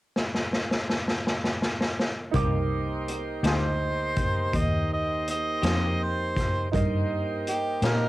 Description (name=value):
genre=slow blues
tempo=55 BPM (dotted quarters)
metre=12/8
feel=straight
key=C minor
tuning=A4 = 441 Hz
part: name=raw garage drum kit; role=drums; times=0.2-8.0 s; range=hi-hat, kick drum, snare drum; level=-27 LUFS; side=left 1 dB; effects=cassette tape
part: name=clear upright piano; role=accompaniment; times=2.3-8.1 s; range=Eb4 to D6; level=-33 LUFS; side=right 7 dB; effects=none
part: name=electric guitar through a small old amp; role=accompaniment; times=2.3-8.1 s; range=C3 to G4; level=-34 LUFS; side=left 7 dB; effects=harmonic tremolo
part: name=tonewheel organ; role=sustained chords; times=2.3-8.1 s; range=Bb3 to C5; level=-34 LUFS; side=equal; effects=slow rotary speaker
part: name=vintage muted fingered electric bass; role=bass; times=2.3-8.1 s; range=C2 to Bb2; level=-29 LUFS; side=left 1 dB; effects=transformer saturation
part: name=warm harmonica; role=melody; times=3.5-8.1 s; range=F4 to Eb5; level=-29 LUFS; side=right 1 dB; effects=overdrive
room=little or no reverb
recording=home recording on cassette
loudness=-24 LUFS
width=side -17 dB against mid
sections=0.0-2.3 A section; 2.3-8.1 B section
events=drum fill 0.1-2.3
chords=0.0 N.C.; 2.3 Cm7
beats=0.15 1.24 | 2.34 3.44 4.54 5.63 | 6.73 7.83